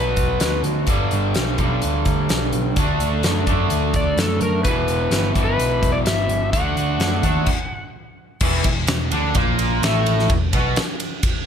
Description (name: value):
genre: blues rock power trio and southern rock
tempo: 128 BPM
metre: 4/4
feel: straight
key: E minor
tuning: A4 = 440 Hz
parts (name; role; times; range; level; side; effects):
- overdriven slide guitar; melody; 0.0-0.6, 4.0-7.9 s; A4 to F#5; -24 LUFS; left 2 dB; tape echo
- raw garage guitar; riff; 0.0-10.8 s; E2 to D4; -22 LUFS; equal; overdrive
- overdriven picked electric bass; bass; 0.0-10.8 s; E1 to F#2; -22 LUFS; equal; none
- huge arena drum kit; drums; 0.2-11.3 s; crash cymbal, hi-hat, kick drum, ride cymbal, snare drum; -22 LUFS; equal; none
room: little or no reverb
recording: none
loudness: -17 LUFS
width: side -8 dB against mid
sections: 0.0-8.4 A section; 8.4-11.5 B section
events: stop 7.5-8.4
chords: 0.0 Bm; 0.9 G; 2.8 D; 4.7 Em; 6.5 D; 8.4 E5